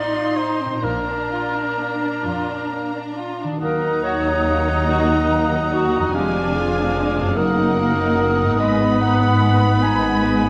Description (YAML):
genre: classical, slow romantic movement for symphony orchestra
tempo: 42-49 BPM (dotted quarters)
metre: 6/8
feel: rubato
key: Eb minor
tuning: A4 = 444 Hz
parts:
  - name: warm symphonic violin section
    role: melody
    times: 0.0-10.5 s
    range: Gb5 to C6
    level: -33 LUFS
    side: equal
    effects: none
  - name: clear cor anglais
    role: second line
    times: 0.0-10.5 s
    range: Bb4 to Gb5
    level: -28 LUFS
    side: equal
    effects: none
  - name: rich symphonic violin section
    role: second line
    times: 0.0-10.5 s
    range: Ab3 to Gb4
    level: -30 LUFS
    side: equal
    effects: none
  - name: warm symphonic viola section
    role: accompaniment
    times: 0.0-10.5 s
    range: Bb3 to Eb4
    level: -29 LUFS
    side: equal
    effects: none
  - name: concert harp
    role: arpeggios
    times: 0.0-10.5 s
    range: F2 to Eb5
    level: -30 LUFS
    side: equal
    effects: none
  - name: warm symphonic cello section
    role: bass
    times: 0.0-10.5 s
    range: Eb2 to Bb2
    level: -27 LUFS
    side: equal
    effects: none
  - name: warm symphonic double bass section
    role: bass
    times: 0.0-10.5 s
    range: F1 to Eb2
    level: -28 LUFS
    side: equal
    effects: none
  - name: clear clarinet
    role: second line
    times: 3.6-10.5 s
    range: Gb4 to Ab5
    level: -25 LUFS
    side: equal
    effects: none
  - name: silver concert flute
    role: second line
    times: 3.6-10.5 s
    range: D6 to Eb6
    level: -29 LUFS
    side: equal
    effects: none
  - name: mellow French horn section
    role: sustained chords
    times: 3.6-10.5 s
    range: F3 to Eb4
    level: -28 LUFS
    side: equal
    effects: none
room: wet scoring stage reverb, RT60 1.5 s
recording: none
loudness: -19 LUFS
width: mono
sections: 0.0-3.6 A section; 3.6-10.5 A section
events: none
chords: 0.0 F7/A; 0.8 Bb; 3.6 Ebm; 6.2 Ddim/F; 7.4 Ebm/Gb; 8.6 Abm